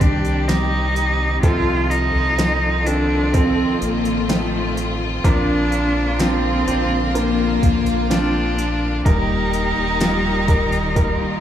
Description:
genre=pop ballad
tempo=63 BPM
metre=4/4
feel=straight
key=Eb major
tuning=A4 = 438 Hz
part: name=warm cello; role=melody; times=0.0-11.4 s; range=A3 to F4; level=-21 LUFS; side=equal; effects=slapback echo, ping-pong delay
part: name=warm concert grand piano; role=accompaniment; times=0.0-11.4 s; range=Bb2 to C5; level=-24 LUFS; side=right 1 dB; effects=slapback echo
part: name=warm studio string section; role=sustained chords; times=0.0-11.4 s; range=D3 to A4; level=-26 LUFS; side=left 1 dB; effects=none
part: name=sub bass with octave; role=bass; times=0.0-11.2 s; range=Eb1 to C2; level=-23 LUFS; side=equal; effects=none
part: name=smooth R&B drum kit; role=drums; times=0.0-11.2 s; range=hi-hat, kick drum, snare drum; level=-19 LUFS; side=equal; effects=none
part: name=warm studio violin section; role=second line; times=5.2-11.4 s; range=F4 to Bb5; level=-28 LUFS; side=right 2 dB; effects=slapback echo, ping-pong delay
room=little or no reverb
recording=live gig heard through the venue's PA, club reverb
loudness=-16 LUFS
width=side -10 dB against mid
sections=0.0-11.4 A section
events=none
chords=0.0 Cm; 1.4 F7/C; 5.2 Bbadd9; 9.1 Eb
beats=0.48 | 1.44 2.39 3.34 4.29 | 5.25 6.20 7.15 8.10 | 9.05 10.01 10.96

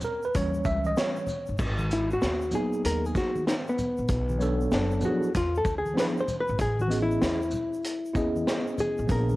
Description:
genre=hip hop, jazz-hop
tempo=96 BPM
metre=4/4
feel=swing 66% on 16ths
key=G# minor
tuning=A4 = 440 Hz
part: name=tine electric piano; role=accompaniment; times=0.0-9.4 s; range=E3 to E5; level=-29 LUFS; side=right 1 dB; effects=overdrive, fast stereo tremolo, cassette tape
part: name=vintage drum kit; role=drums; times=0.0-9.3 s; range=crash cymbal, hi-hat, kick drum, shaker, snare drum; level=-31 LUFS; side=equal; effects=vintage 12-bit sampler grit, cassette tape
part: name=congas and tube shaker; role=percussion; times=0.0-9.4 s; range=none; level=-38 LUFS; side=left 1 dB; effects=none
part: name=upright bass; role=bass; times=0.4-9.4 s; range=F#1 to E2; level=-30 LUFS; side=equal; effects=none
part: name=hollow-body jazz guitar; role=melody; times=1.9-9.4 s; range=B3 to B#4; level=-28 LUFS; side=left 1 dB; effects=cassette tape
room=light reverb, studio ambience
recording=home recording on cassette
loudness=-24 LUFS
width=side -18 dB against mid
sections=0.0-1.6 A section; 1.6-9.4 A section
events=tine electric piano solo 0.0-1.6; hollow-body jazz guitar solo 1.6-9.4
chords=0.3 D#7b9; 1.6 G#m9; 4.1 Bm9; 5.3 E7b9; 6.6 Amaj9#11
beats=0.34 0.96 | 1.59 2.21 2.84 3.46 | 4.09 4.71 5.34 5.96 | 6.59 7.21 7.84 8.46 | 9.09

